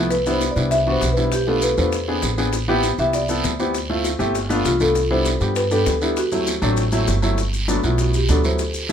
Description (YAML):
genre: Afro-Cuban jazz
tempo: 198 BPM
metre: 4/4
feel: straight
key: G major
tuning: A4 = 440 Hz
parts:
  - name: dark baby grand piano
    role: accompaniment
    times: 0.0-8.9 s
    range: F3 to A4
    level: -22 LUFS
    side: left 1 dB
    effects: none
  - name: upright bass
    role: bass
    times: 0.0-8.9 s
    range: G1 to G2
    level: -22 LUFS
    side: right 1 dB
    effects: none
  - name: marimba with medium mallets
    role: melody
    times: 0.1-8.9 s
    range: F4 to E5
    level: -22 LUFS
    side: equal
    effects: none
  - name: bongos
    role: percussion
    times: 0.1-8.9 s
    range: none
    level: -31 LUFS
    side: left 7 dB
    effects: none
  - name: guiro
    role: percussion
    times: 0.1-8.9 s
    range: none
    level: -30 LUFS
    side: right 4 dB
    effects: none
  - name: maracas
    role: percussion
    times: 0.1-8.9 s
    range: none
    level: -33 LUFS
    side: left 4 dB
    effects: none
room: light reverb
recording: minimal, uncompressed stereo recording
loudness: -17 LUFS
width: side -8 dB against mid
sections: 0.0-7.4 A section; 7.4-8.9 B section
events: marimba solo 7.4-8.9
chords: 0.1 Cmaj9; 1.3 Bm7b5; 1.9 E7b13; 2.5 Am9; 3.7 Dm9; 4.3 G7; 5.0 Cmaj7; 6.2 D7; 7.4 Gmaj9